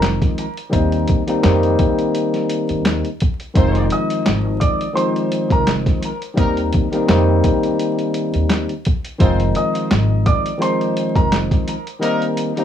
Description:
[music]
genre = hip hop, boom-bap hip-hop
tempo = 85 BPM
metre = 4/4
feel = swing 55% on 16ths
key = F dorian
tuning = A4 = 443 Hz
[part]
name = tine electric piano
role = accompaniment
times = 0.0-12.6 s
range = Eb3 to Eb4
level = -19 LUFS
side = left 2 dB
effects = high-pass filter, low-pass filter, plate reverb
[part]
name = upright bass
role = bass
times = 0.0-11.5 s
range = F1 to F2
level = -19 LUFS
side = right 1 dB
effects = none
[part]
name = boom bap sampler-style drum kit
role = drums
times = 0.0-12.6 s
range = handclaps, hi-hat, kick drum, snare drum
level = -18 LUFS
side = equal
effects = overdrive
[part]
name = mellow horn section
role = stabs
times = 3.6-12.2 s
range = G3 to C5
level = -27 LUFS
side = right 2 dB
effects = high-pass filter, low-pass filter, plate reverb, tape echo
[part]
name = warm upright piano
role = melody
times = 3.9-11.3 s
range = Bb4 to Eb6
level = -24 LUFS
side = right 1 dB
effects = high-pass filter, low-pass filter, plate reverb, tape echo
[sound]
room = light reverb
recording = worn, warbling old tape, cassette tape, vinyl crackle, warbly pitch drift, small room ambience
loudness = -15 LUFS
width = side -9 dB against mid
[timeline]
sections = 0.0-12.6 A section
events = kick muted 12.0-12.6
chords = 0.0 Fm7; 0.7 Cm7/Eb; 3.6 Fm7; 6.4 Cm7/Eb; 9.2 Fm7; 12.0 Cm7/Eb

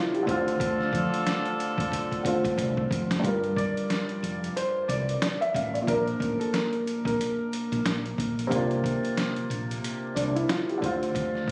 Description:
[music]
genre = hip hop, boom-bap hip-hop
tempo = 91 BPM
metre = 4/4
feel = swing 60% on 16ths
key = G minor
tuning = A4 = 441 Hz
[part]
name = dark grand piano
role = accompaniment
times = 0.0-11.5 s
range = G2 to F5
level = -30 LUFS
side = equal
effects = high-pass filter, low-pass filter
[part]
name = trip hop sampler-style drum kit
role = drums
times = 0.1-11.5 s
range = hi-hat, kick drum, snare drum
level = -35 LUFS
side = equal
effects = none
[part]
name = warm horn section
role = stabs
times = 0.3-2.9 s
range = D4 to A4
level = -35 LUFS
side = equal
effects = high-pass filter, low-pass filter, delay
[part]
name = woody fretless electric bass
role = bass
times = 0.3-11.5 s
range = F1 to F2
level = -35 LUFS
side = equal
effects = none
[part]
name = clear upright piano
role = melody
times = 3.6-8.5 s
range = A4 to D5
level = -35 LUFS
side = equal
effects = high-pass filter, low-pass filter, delay
[sound]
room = light reverb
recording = recorded on a phone in the room, studio reverb, vinyl crackle, compression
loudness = -28 LUFS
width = mono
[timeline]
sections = 0.0-3.2 A section; 3.2-11.5 B section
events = drum fill 1.9-3.2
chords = 0.3 Dm7; 3.2 Gm7; 5.9 Bb; 8.5 C9sus4; 10.8 Dm7

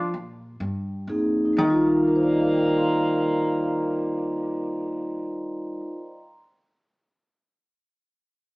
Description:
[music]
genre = jazz, small-group swing and bop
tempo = 119-134 BPM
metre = 3/4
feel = swing 65% on 8ths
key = Eb major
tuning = A4 = 440 Hz
[part]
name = hollow-body jazz guitar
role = melody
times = 0.0-5.8 s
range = Eb3 to F4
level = -30 LUFS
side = equal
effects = none
[part]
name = breathy alto saxophone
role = second line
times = 0.0-5.4 s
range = Bb3 to D4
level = -30 LUFS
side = equal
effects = none
[part]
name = upright bass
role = bass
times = 0.1-5.8 s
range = Eb2 to Bb2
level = -36 LUFS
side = equal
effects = none
[part]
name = vibraphone with soft mallets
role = accompaniment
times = 1.1-6.4 s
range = G3 to C6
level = -22 LUFS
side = equal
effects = none
[sound]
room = moderate studio reverb, RT60 0.9 s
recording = heard from further back in the room, small speaker sound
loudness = -21 LUFS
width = side -25 dB against mid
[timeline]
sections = 0.0-1.6 A section; 1.6-4.6 B section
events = slowing down 0.0-1.6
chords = 0.1 Bb9sus4; 1.6 Ebmaj9

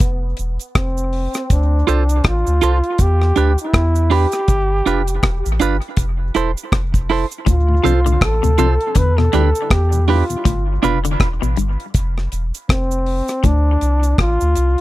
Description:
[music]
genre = dub reggae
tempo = 80 BPM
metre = 4/4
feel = swing 58% on 16ths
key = D dorian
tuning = A4 = 440 Hz
[part]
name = warm trombone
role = melody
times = 0.0-14.8 s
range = B3 to B4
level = -21 LUFS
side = equal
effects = dub echo
[part]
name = warm sub bass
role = bass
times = 0.0-14.8 s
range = E1 to E2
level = -17 LUFS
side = equal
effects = none
[part]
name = deep reggae drum kit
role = drums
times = 0.0-14.8 s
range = hi-hat, kick drum, rim click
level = -17 LUFS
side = equal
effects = none
[part]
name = cabasa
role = percussion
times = 0.0-14.8 s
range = none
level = -33 LUFS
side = right 10 dB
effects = high-pass filter on perc
[part]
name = clean electric guitar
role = accompaniment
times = 1.9-11.0 s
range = D4 to C5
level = -21 LUFS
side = right 8 dB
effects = high-pass filter, dub echo
[part]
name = semi-hollow electric guitar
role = arpeggios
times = 7.5-13.6 s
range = G2 to D3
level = -24 LUFS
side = left 8 dB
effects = dub echo
[part]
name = mellow tonewheel organ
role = accompaniment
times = 7.7-10.4 s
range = D2 to E4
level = -27 LUFS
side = left 3 dB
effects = slow rotary speaker, high-pass filter, dub echo
[sound]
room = little or no reverb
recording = dry, close 1970s-style studio recording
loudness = -14 LUFS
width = side -16 dB against mid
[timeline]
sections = 0.0-14.8 A section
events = break 0.0-7.5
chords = 0.0 F5; 1.5 Dm7; 3.0 Em7; 4.5 G7; 6.0 Fmaj7; 7.5 Dm7; 9.0 Em7; 10.5 G7; 11.9 F5; 13.4 Dm7

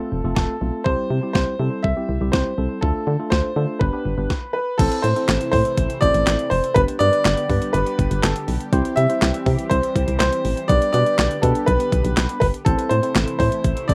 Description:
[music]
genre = synth-pop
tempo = 122 BPM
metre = 4/4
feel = straight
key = C major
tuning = A4 = 439 Hz
[part]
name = clear baby grand piano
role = melody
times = 0.0-13.9 s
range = A4 to E5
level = -24 LUFS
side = equal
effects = tape echo
[part]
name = tine electric piano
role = accompaniment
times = 0.0-13.9 s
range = G3 to C5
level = -29 LUFS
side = equal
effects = none
[part]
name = solid FM bass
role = bass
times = 0.1-13.9 s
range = F1 to D3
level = -23 LUFS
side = equal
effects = none
[part]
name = clean 12-bit digital drum machine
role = drums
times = 0.4-13.9 s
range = crash cymbal, handclaps, hi-hat, kick drum, snare drum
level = -25 LUFS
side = equal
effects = none
[part]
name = phased analog pad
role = sustained chords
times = 5.2-13.9 s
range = C3 to G4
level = -34 LUFS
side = equal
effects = phaser, chorus
[sound]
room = light reverb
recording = rough home demo mix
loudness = -20 LUFS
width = mono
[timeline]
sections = 0.0-4.8 A section; 4.8-13.9 B section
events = stop 4.3-4.8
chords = 0.0 F; 0.9 C; 2.8 Dm; 3.8 G; 4.8 Am; 6.8 G; 8.7 C; 10.7 G/B; 12.7 Am

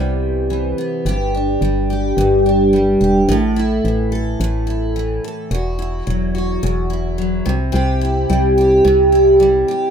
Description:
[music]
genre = acoustic pop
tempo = 108 BPM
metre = 4/4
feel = swing 55% on 16ths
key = G major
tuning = A4 = 440 Hz
[part]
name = picked steel-string acoustic guitar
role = accompaniment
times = 0.0-9.9 s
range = E2 to A4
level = -15 LUFS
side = equal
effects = double-tracked left and right
[part]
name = organ-like FM bass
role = bass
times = 0.0-9.6 s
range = E1 to C2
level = -20 LUFS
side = equal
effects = none
[sound]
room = moderate studio ambience, RT60 0.5 s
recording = rough home demo mix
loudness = -14 LUFS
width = side -7 dB against mid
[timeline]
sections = 0.0-1.1 A section; 1.1-9.9 B section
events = none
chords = 0.0 Cmaj7; 1.1 G5; 3.3 A5; 5.5 Esus2; 7.5 C

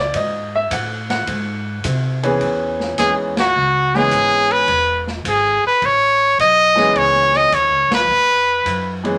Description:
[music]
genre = jazz, small-group swing and bop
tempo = 106 BPM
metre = 4/4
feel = swing 69% on 8ths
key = C# minor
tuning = A4 = 439 Hz
[part]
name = clear upright piano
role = accompaniment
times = 0.0-9.2 s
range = E3 to F#5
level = -23 LUFS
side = equal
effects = none
[part]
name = upright bass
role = bass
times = 0.0-9.2 s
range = E1 to B#2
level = -28 LUFS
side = equal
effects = none
[part]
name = open jazz drum kit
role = drums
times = 0.1-9.1 s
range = hi-hat, kick drum, ride cymbal, snare drum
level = -30 LUFS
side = equal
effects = none
[part]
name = brilliant trumpet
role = melody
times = 3.0-9.0 s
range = F#4 to D#5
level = -16 LUFS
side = equal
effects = none
[sound]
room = moderate club reverb, RT60 0.6 s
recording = none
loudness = -16 LUFS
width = mono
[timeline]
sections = 0.0-2.4 A section; 2.4-9.2 B section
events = band accent 3.3, 7.8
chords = 0.1 G#7b9; 2.4 C#m7

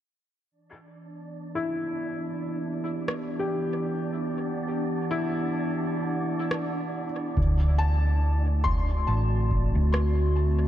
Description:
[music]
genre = ambient dub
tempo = 70 BPM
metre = 4/4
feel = swing 56% on 16ths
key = E minor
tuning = A4 = 439 Hz
[part]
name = warbly tape-like pad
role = sustained chords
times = 1.0-10.7 s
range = D3 to F#5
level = -31 LUFS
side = right 1 dB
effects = chorus, built-in reverb
[part]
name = wind-like tuned noise texture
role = texture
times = 1.0-10.7 s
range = D4 to D5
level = -38 LUFS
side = equal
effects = built-in reverb
[part]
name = felt-muted upright piano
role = arpeggios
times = 1.6-10.7 s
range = E4 to C6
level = -32 LUFS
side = left 2 dB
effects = low-pass filter, tape echo
[part]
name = electronic rim click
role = drums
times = 3.1-10.1 s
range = none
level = -34 LUFS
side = equal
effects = dub echo
[part]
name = hollow-body short-scale fingered electric bass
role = bass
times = 7.4-10.7 s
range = A1 to D2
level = -23 LUFS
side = equal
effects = tube saturation
[part]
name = electronic kick drum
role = drums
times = 7.4-9.7 s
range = none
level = -29 LUFS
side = equal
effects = none
[sound]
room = light reverb, digital ambience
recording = none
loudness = -24 LUFS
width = side -12 dB against mid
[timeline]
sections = 0.5-10.7 A section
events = filter sweep on felt piano 0.5-10.7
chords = 0.5 Em9; 7.4 D9

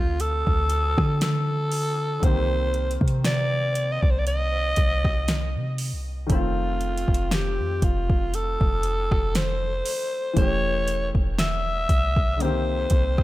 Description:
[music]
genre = contemporary R&B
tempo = 59 BPM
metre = 4/4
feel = swing 54% on 16ths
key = C dorian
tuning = A4 = 440 Hz
[part]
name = breathy alto saxophone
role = melody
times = 0.0-13.2 s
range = F4 to E5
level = -26 LUFS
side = equal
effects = ping-pong delay
[part]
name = warm baby grand piano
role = accompaniment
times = 0.0-13.2 s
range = D3 to G4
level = -32 LUFS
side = left 2 dB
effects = none
[part]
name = clean 808-style bass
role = bass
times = 0.0-13.2 s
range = E1 to D3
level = -26 LUFS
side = equal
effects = none
[part]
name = smooth R&B drum kit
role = drums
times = 0.2-13.2 s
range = hi-hat, kick drum, rim click, snare drum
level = -24 LUFS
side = equal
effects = none
[sound]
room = little or no reverb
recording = none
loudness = -21 LUFS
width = side -16 dB against mid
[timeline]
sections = 0.0-13.2 A section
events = none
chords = 0.0 Dm7; 2.2 Cm7; 6.3 F7; 10.4 A7/E; 12.4 Cm7

